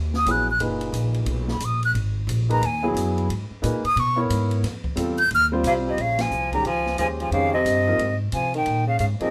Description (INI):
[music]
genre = modal jazz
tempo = 179 BPM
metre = 4/4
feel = swing 63% on 8ths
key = C# dorian, Bb dorian from 6.0 s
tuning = A4 = 436 Hz
[part]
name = upright bass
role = bass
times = 0.0-9.2 s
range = F#1 to C3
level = -28 LUFS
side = equal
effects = none
[part]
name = open jazz drum kit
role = drums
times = 0.1-9.3 s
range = hi-hat, kick drum, ride cymbal, snare drum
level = -38 LUFS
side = equal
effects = none
[part]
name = breathy silver concert flute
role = melody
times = 0.2-9.3 s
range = Eb5 to G6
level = -24 LUFS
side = equal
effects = none
[part]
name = warm grand piano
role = accompaniment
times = 0.3-9.3 s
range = A#2 to C#5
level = -29 LUFS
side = equal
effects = none
[part]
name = warm tenor saxophone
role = second line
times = 5.7-9.3 s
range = C3 to G3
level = -30 LUFS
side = equal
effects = none
[sound]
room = light reverb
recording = none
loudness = -23 LUFS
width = mono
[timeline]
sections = 0.0-6.0 A section; 6.0-9.3 B section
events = flute solo 0.0-6.0; band accent 6.1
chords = 0.0 C#9sus4 (rootless); 4.6 F7; 6.0 Bbm11